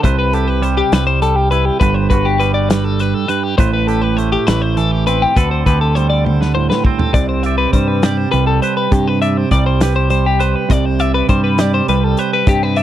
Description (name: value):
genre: math rock and midwest emo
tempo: 68 BPM (dotted quarters)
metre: 6/8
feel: straight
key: unclear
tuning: A4 = 443 Hz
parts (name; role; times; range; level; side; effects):
- twangy electric guitar; accompaniment; 0.0-12.8 s; G2 to D5; -18 LUFS; right 9 dB; none
- twelve-string electric guitar; arpeggios; 0.0-12.8 s; G4 to E5; -18 LUFS; left 6 dB; spring reverb
- picked electric bass; bass; 0.0-12.8 s; G1 to G2; -16 LUFS; equal; none
- loose indie drum kit; drums; 0.0-12.8 s; hi-hat, kick drum, snare drum, toms; -16 LUFS; equal; none
room: little or no reverb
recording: dry, close 1970s-style studio recording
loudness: -12 LUFS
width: side -12 dB against mid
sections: 0.0-7.1 A section; 7.1-12.8 B section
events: drum fill 6.3-7.1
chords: 0.0 Cmaj7; 1.8 Gmaj9; 3.6 Am9; 5.4 D7sus4; 7.1 Cmaj7(no3)